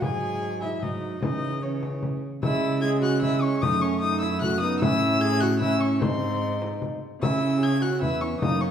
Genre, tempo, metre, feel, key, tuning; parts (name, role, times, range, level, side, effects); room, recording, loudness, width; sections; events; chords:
classical, renaissance-style consort dance; 150 BPM; 3/4; straight; C# minor; A4 = 437 Hz
warm violin; melody; 0.0-8.7 s; C#5 to G#6; -30 LUFS; left 4 dB
warm viola; second line; 0.0-8.7 s; B#3 to G#4; -29 LUFS; right 3 dB
clear trombone; accompaniment; 0.0-8.7 s; E3 to D#4; -29 LUFS; left 1 dB
rich cello; bass; 0.0-8.7 s; E2 to C#3; -28 LUFS; right 1 dB
frame drum; percussion; 0.0-8.6 s; -30 LUFS; left 2 dB
wet stone room reverb, RT60 1.4 s; heard from further back in the room; -22 LUFS; side -8 dB against mid
0.0-2.4 A section; 2.4-8.7 A section
0.0 Eadd9/G#; 1.2 C#m; 3.6 F#m; 4.8 A; 6.0 G#; 7.2 C#m